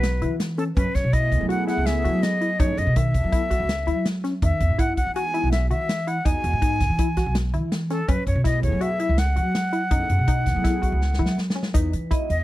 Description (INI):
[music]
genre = progressive instrumental, band music in an uneven meter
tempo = 164 BPM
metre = 5/4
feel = straight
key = F# dorian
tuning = A4 = 440 Hz
[part]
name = breathy bright concert flute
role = melody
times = 0.0-12.4 s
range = A4 to G#5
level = -26 LUFS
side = left 1 dB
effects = none
[part]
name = tight sequenced synth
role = arpeggios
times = 0.0-12.3 s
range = D#3 to F#4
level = -29 LUFS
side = left 3 dB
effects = chorus
[part]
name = upright bass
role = bass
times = 0.0-12.4 s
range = B1 to F#3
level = -24 LUFS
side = equal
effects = none
[part]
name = natural country drum kit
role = drums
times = 0.0-12.4 s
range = hi-hat, kick drum, snare drum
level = -25 LUFS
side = equal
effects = none
[part]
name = chorused pulse-width pad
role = accompaniment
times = 1.2-12.2 s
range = A3 to G#4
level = -33 LUFS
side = right 2 dB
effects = none
[part]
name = egg shaker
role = percussion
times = 11.7-11.9 s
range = none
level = -40 LUFS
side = right 16 dB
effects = none
[part]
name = vibraphone with hard mallets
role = second line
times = 11.8-12.4 s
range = B4 to D#5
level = -32 LUFS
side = right 4 dB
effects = none
[sound]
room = small room ambience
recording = dry, close 1970s-style studio recording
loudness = -20 LUFS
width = side -16 dB against mid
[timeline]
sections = 0.0-11.7 A section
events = drum fill 11.0-11.7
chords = 0.0 E5; 0.8 F#m11; 4.4 Emaj7; 8.1 F#m11; 11.7 Emaj7